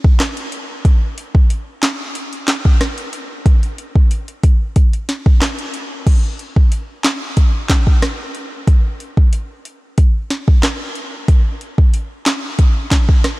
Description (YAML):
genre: dancehall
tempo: 92 BPM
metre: 4/4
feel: straight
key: none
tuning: none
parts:
  - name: afro-pop drum kit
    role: drums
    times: 0.0-13.4 s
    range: crash cymbal, handclaps, hi-hat, kick drum, rim click, snare drum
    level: -13 LUFS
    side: equal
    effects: none
room: little or no reverb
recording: none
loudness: -13 LUFS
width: side -21 dB against mid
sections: 0.0-6.1 A section; 6.1-13.4 B section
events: none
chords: none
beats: 0.20 | 0.85 1.50 2.15 2.81 | 3.46 4.11 4.76 5.41 | 6.07 6.72 7.37 8.02 | 8.68 9.33 9.98 10.63 | 11.28 11.94 12.59 13.24